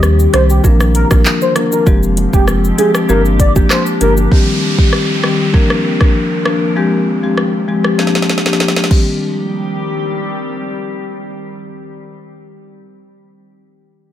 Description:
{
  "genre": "dancehall",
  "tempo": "98 BPM",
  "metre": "4/4",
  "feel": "straight",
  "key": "C minor",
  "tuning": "A4 = 440 Hz",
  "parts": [
    { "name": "marimba with medium mallets", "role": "accompaniment", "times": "0.0-12.0 s", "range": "Eb3 to Bb4", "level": "-16 LUFS", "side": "left 2 dB", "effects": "none" },
    { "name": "glassy FM pad", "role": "sustained chords", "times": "0.0-12.0 s", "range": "Eb3 to G4", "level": "-22 LUFS", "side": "left 2 dB", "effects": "ensemble chorus, built-in reverb, sidechain pumping" },
    { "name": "saturated sub bass", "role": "bass", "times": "0.0-4.3 s", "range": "F1 to Eb2", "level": "-14 LUFS", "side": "right 1 dB", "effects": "none" },
    { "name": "afro-pop drum kit", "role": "drums", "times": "0.0-9.1 s", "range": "crash cymbal, handclaps, hi-hat, kick drum, rim click, shaker, snare drum", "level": "-14 LUFS", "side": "equal", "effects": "none" },
    { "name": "warm velvety synth lead", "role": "melody", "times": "0.3-4.1 s", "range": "G4 to D5", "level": "-17 LUFS", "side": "equal", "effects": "chorus, ping-pong delay" },
    { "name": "bongos", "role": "percussion", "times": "0.3-4.3 s", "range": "none", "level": "-24 LUFS", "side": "right 7 dB", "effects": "none" },
    { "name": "downlifter", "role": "sound effects", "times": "4.3-9.2 s", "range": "none", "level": "-24 LUFS", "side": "right 2 dB", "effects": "none" }
  ],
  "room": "light reverb, digital ambience",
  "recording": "none",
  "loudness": "-11 LUFS",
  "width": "side -11 dB against mid",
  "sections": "0.0-4.3 A section; 4.3-9.2 B section; 9.2-11.7 C section",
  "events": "drum fill 8.0-9.2",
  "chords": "0.0 Cm; 0.6 Bb; 1.9 Fmadd9; 3.1 Gm7; 4.3 Cm; 5.5 Bb; 6.8 Fmadd9; 8.0 Gm7; 8.9 Cm"
}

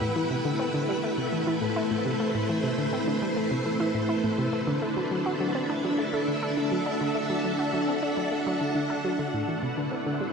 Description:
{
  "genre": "ambient, sequencer-driven space music",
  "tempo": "103 BPM",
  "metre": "4/4",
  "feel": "straight",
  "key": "A dorian",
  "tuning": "A4 = 437 Hz",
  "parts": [
    { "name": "string machine, full ensemble", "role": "sustained chords", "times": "0.0-10.3 s", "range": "A3 to G5", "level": "-26 LUFS", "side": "equal", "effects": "ensemble chorus" },
    { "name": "analog pluck", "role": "riff", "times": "0.0-10.3 s", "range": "A2 to A4", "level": "-30 LUFS", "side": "equal", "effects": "chorus, analog delay" }
  ],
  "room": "wet huge ambient reverb, RT60 7.6 s",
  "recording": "cassette tape",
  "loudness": "-25 LUFS",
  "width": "side -5 dB against mid",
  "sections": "0.0-9.3 A section",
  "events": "none",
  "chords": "0.0 Am7; 4.7 D7; 9.3 Am"
}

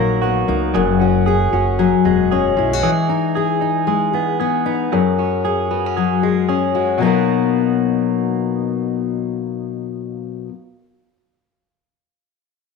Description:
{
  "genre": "pop",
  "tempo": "115 BPM",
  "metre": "4/4",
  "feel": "swing 60% on 16ths",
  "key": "B major",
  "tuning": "A4 = 438 Hz",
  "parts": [
    { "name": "fingerpicked steel-string acoustic guitar", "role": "accompaniment", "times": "0.0-10.6 s", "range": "F#2 to A#4", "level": "-17 LUFS", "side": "left 10 dB", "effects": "none" },
    { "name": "direct-recorded clean electric guitar", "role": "arpeggios", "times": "0.0-10.6 s", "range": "D#3 to G#4", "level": "-22 LUFS", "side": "right 11 dB", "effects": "spring reverb" },
    { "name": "upright bass", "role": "bass", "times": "0.0-2.8 s", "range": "E1 to C#2", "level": "-22 LUFS", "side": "right 2 dB", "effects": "none" }
  ],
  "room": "wet plate reverb, RT60 1.3 s, studio reverb",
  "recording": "1960s-style stereo with parts hard left and right",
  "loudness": "-15 LUFS",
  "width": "side -4 dB against mid",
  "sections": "0.0-7.0 A section; 7.0-11.2 B section",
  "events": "none",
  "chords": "0.0 Bmaj7; 0.7 F#sus2; 2.8 Emaj7; 4.9 F#sus2; 7.0 Bmaj7"
}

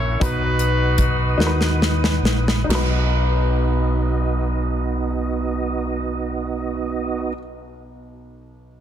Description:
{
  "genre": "slow gospel",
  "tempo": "43-54 BPM (dotted quarters)",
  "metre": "6/8",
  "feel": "straight",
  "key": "B major",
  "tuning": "A4 = 441 Hz",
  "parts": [
    { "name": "clear horn section", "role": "melody", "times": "0.0-1.8 s", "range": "C#4 to C#5", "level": "-24 LUFS", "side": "equal", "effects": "none" },
    { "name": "clear concert grand piano", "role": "accompaniment", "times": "0.0-8.8 s", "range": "B1 to E5", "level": "-27 LUFS", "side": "left 2 dB", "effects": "none" },
    { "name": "tonewheel organ", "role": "sustained chords", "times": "0.0-7.3 s", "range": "B3 to D#6", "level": "-26 LUFS", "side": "right 6 dB", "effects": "slow rotary speaker, chorus vibrato" },
    { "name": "fingered electric bass", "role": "bass", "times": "0.0-7.3 s", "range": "A#1 to D#2", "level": "-22 LUFS", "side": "equal", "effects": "none" },
    { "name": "modern studio drum kit", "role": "drums", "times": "0.2-2.9 s", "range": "crash cymbal, hi-hat, kick drum, snare drum", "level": "-23 LUFS", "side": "equal", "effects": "soft clipping on kick" }
  ],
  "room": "small room ambience",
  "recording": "dense, heavily limited modern master",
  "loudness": "-18 LUFS",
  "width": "side -10 dB against mid",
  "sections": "0.0-2.7 A section; 2.7-8.2 B section",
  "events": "slowing down 0.0-2.7; drum fill 1.4-2.7",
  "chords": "0.2 B"
}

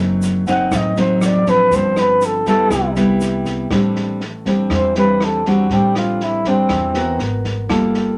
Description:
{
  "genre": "bossa nova",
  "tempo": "120 BPM",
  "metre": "4/4",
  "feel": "straight",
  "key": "unclear",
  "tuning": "A4 = 443 Hz",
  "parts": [
    { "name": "nylon-string guitar", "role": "accompaniment", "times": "0.0-8.2 s", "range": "F#2 to Bb4", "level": "-19 LUFS", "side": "equal", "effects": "none" },
    { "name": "upright bass", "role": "bass", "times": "0.0-8.2 s", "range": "F#1 to E2", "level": "-29 LUFS", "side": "equal", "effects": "none" },
    { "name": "open jazz drum kit", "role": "drums", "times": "0.2-8.0 s", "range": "kick drum, rim click, snare drum", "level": "-29 LUFS", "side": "equal", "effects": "none" },
    { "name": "egg shaker", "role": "percussion", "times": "0.2-3.7 s", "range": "none", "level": "-41 LUFS", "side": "equal", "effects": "none" },
    { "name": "breathy flugelhorn", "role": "melody", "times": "0.5-7.2 s", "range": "C4 to F#5", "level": "-19 LUFS", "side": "equal", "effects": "none" }
  ],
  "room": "moderate club reverb, RT60 0.6 s",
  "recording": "none",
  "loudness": "-17 LUFS",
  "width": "mono",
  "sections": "0.0-3.7 A section; 3.7-8.2 A section",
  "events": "flugelhorn solo 0.0-3.7, 3.7-8.2",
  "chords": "0.0 D7b9/F#; 1.7 G7sus4; 2.7 Cmaj7; 3.7 Am11; 7.2 Abm9"
}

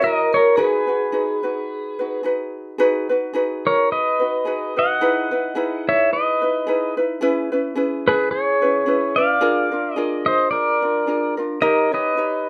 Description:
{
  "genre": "Hawaiian",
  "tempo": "109 BPM",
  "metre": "4/4",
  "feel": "swing 56% on 8ths",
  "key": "G# minor",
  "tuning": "A4 = 443 Hz",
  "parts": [
    { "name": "pedal steel guitar", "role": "melody", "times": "0.0-12.5 s", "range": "G#4 to F#5", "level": "-21 LUFS", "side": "equal", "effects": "none" },
    { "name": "vibraphone with medium hard mallets", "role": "second line", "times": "0.0-2.2 s", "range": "G#4 to A#4", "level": "-25 LUFS", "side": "equal", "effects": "none" },
    { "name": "ukulele", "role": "accompaniment", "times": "0.0-12.5 s", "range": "C#4 to C#5", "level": "-24 LUFS", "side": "equal", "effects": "none" }
  ],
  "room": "wet studio reverb, RT60 0.5 s",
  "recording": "rough home demo mix",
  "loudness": "-20 LUFS",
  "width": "mono",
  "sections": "0.0-2.8 A section; 2.8-12.5 B section",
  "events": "none",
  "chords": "0.0 F#7; 0.6 B6; 5.0 Emaj7; 7.2 C#m7; 9.4 A#7; 11.6 D#7"
}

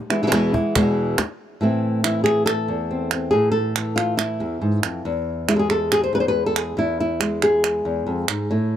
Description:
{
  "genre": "flamenco",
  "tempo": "139 BPM",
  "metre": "4/4",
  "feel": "straight",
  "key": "unclear",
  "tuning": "A4 = 440 Hz",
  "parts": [
    { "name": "flamenco guitar", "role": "melody", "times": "0.1-8.8 s", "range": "E2 to C5", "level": "-19 LUFS", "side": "equal", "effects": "none" },
    { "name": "palmas hand claps", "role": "percussion", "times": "0.1-8.5 s", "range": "none", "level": "-23 LUFS", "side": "right 9 dB", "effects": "none" },
    { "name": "cajon", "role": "percussion", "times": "0.3-1.4 s", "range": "none", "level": "-26 LUFS", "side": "left 2 dB", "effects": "none" }
  ],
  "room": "little or no reverb",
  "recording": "dry, close 1970s-style studio recording",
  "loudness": "-19 LUFS",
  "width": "side -10 dB against mid",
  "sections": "0.0-1.6 A section; 1.6-8.8 B section",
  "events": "none",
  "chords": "0.0 E; 1.6 Am; 5.1 E"
}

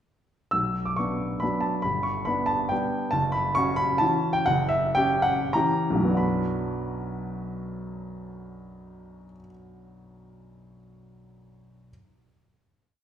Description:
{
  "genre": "classical, piano waltz",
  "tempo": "89-146 BPM",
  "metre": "3/4",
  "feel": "rubato",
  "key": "B minor",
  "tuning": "A4 = 439 Hz",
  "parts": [
    { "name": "warm baby grand piano", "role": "solo", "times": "0.5-11.9 s", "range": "F#1 to E6", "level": "-24 LUFS", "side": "equal", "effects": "none" }
  ],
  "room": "wet recital hall reverb, RT60 1.5 s",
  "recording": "recorded in a church or concert hall",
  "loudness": "-23 LUFS",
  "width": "side -9 dB against mid",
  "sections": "0.5-6.2 A section; 6.2-9.8 final chord",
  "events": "slowing down 2.5-6.2",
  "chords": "0.5 Bm; 1.8 G; 3.1 F#5; 4.5 F#7b9; 6.2 Bm"
}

